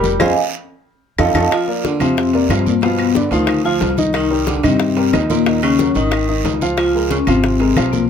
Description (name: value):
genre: Afro-Cuban jazz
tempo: 182 BPM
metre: 4/4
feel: straight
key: Bb major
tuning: A4 = 440 Hz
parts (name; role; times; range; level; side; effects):
- vibraphone with medium mallets; melody; 0.0-8.1 s; Bb3 to A5; -17 LUFS; left 4 dB; none
- warm upright piano; accompaniment; 0.0-8.0 s; Eb3 to F5; -20 LUFS; equal; none
- upright bass; bass; 0.0-8.1 s; F1 to G2; -21 LUFS; equal; none
- congas; percussion; 0.0-8.1 s; none; -26 LUFS; equal; none
- cowbell and bongos; percussion; 0.0-8.1 s; none; -25 LUFS; left 6 dB; none
- guiro; percussion; 0.0-8.1 s; none; -32 LUFS; right 8 dB; none
- claves; percussion; 0.2-7.9 s; none; -29 LUFS; left 2 dB; none
- timbales; percussion; 0.2-7.9 s; none; -28 LUFS; right 6 dB; none
- clear tenor saxophone; second line; 1.5-8.1 s; Bb2 to F3; -23 LUFS; right 6 dB; none
room: light reverb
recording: none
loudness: -14 LUFS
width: side -7 dB against mid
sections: 0.0-1.5 A section; 1.5-8.1 B section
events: vibraphone solo 0.0-1.5; band accent 0.2-1.5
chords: 0.2 Fm; 0.9 F7; 1.5 Bb6; 2.8 G7b13; 4.1 Cm7; 5.5 Ebm7; 6.1 Ab5; 6.8 Db6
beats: | 0.20 0.53 0.85 1.18 | 1.51 1.84 2.17 2.50 | 2.83 3.16 3.49 3.82 | 4.15 4.48 4.80 5.13 | 5.46 5.79 6.12 6.45 | 6.78 7.11 7.44 7.77 | 8.10